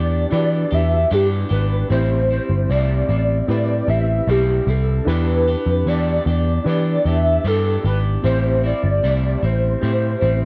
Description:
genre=indie pop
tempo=76 BPM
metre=4/4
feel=straight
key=unclear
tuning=A4 = 440 Hz
part: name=warbly nostalgic lead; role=melody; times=0.0-10.4 s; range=G4 to E5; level=-24 LUFS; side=equal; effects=ensemble chorus, slapback echo
part: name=barky reed electric piano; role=accompaniment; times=0.0-10.4 s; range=C4 to C5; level=-30 LUFS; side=equal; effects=fast tremolo, cassette tape
part: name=electric guitar through a small old amp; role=accompaniment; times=0.0-10.4 s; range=A2 to G4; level=-30 LUFS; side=equal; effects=subtle chorus, warbly pitch drift
part: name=vintage muted picked electric bass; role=bass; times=0.0-10.4 s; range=G1 to E3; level=-21 LUFS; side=equal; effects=none
room=little or no reverb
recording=dry, close 1970s-style studio recording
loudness=-19 LUFS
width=mono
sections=0.0-10.4 A section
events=none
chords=0.0 Em7; 1.9 Am7; 5.1 Em7; 8.2 Am7

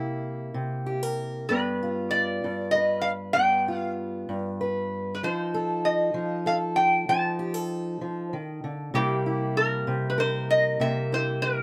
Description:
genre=acoustic country blues, solo or duo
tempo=64 BPM (dotted quarters)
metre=12/8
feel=straight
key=unclear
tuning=A4 = 436 Hz
part: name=lap resonator guitar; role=melody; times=0.0-11.6 s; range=G4 to A5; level=-27 LUFS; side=equal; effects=none
part: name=fingerpicked steel-string acoustic guitar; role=accompaniment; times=0.0-11.6 s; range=G2 to B4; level=-30 LUFS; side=equal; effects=none
room=light reverb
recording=close, detailed microphones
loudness=-27 LUFS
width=mono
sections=0.0-11.6 A section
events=none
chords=0.0 C7; 1.5 G7; 5.2 F7; 8.9 C7

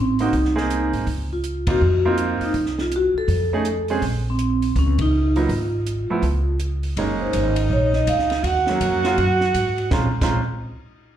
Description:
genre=jazz, small-group swing and bop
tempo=163 BPM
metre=4/4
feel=swing 63% on 8ths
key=Bb minor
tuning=A4 = 440 Hz
part: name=vibraphone with medium mallets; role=melody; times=0.0-10.4 s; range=C4 to Bb5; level=-23 LUFS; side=equal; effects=plate reverb
part: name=upright bass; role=bass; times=0.0-10.4 s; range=Gb1 to Ab2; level=-23 LUFS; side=equal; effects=none
part: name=clear baby grand piano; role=accompaniment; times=0.2-10.4 s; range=F3 to Ab4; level=-25 LUFS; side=right 4 dB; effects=plate reverb, slapback echo
part: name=compact cocktail drum kit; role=drums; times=0.2-10.3 s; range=crash cymbal, hi-hat, kick drum, ride cymbal, snare drum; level=-29 LUFS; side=equal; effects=none
part: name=breathy alto saxophone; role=second line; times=7.0-10.4 s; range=Eb4 to Gb4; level=-23 LUFS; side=right 4 dB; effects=plate reverb, slapback echo
room=light reverb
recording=live gig heard through the venue's PA, club reverb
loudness=-18 LUFS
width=side -10 dB against mid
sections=0.0-7.0 A section; 7.0-9.9 B section; 9.9-11.2 C section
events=band accent 1.6, 4.9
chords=0.0 Ab; 1.1 Dbmaj13; 2.5 Cm; 3.3 F7alt; 4.0 Bbmadd9; 5.5 Abm; 6.2 Db; 7.0 Gb69; 8.4 Ebm9; 9.9 Bbm9

